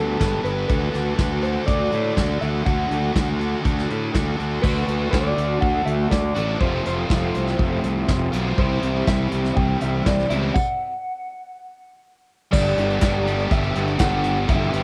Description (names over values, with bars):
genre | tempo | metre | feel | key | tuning
indie rock | 122 BPM | 4/4 | straight | G major | A4 = 440 Hz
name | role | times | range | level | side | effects
electric guitar through a small old amp | melody | 0.0-14.8 s | A4 to G5 | -29 LUFS | equal | none
biting overdriven guitar | riff | 0.0-14.8 s | F2 to B4 | -29 LUFS | equal | cassette tape
fuzz fingered electric bass | bass | 0.0-14.8 s | F1 to A2 | -26 LUFS | equal | overdrive
soft brush drum kit | drums | 0.2-14.8 s | crash cymbal, hi-hat, kick drum, snare drum | -26 LUFS | equal | cassette tape
overdriven electric guitar | riff | 4.6-14.8 s | F3 to G4 | -31 LUFS | equal | ensemble chorus, cassette tape, analog delay
group handclap | percussion | 13.0-14.1 s | none | -37 LUFS | equal | none
room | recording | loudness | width
little or no reverb | home recording on cassette | -22 LUFS | mono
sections
0.0-4.6 A section; 4.6-12.5 B section; 12.5-14.8 C section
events
stop 10.6-12.5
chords
0.0 G; 0.7 D; 4.6 D6; 6.6 F; 8.6 C; 10.6 N.C.; 12.5 G